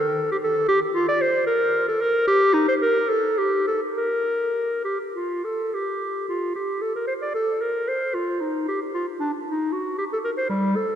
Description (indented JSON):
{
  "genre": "classical, baroque-style fantasia for unaccompanied clarinet",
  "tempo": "66-79 BPM (dotted quarters)",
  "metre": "6/8",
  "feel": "rubato",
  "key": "Bb major, G minor from 5.7 s",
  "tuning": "A4 = 440 Hz",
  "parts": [
    { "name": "warm clarinet", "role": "solo", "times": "0.0-11.0 s", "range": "G3 to D5", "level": "-21 LUFS", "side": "equal", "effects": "none" }
  ],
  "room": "wet cathedral reverb, RT60 4.6 s",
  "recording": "dark, warm production",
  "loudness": "-21 LUFS",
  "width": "side -9 dB against mid",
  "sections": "0.0-5.7 A section; 5.7-11.0 A section",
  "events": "none",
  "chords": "none"
}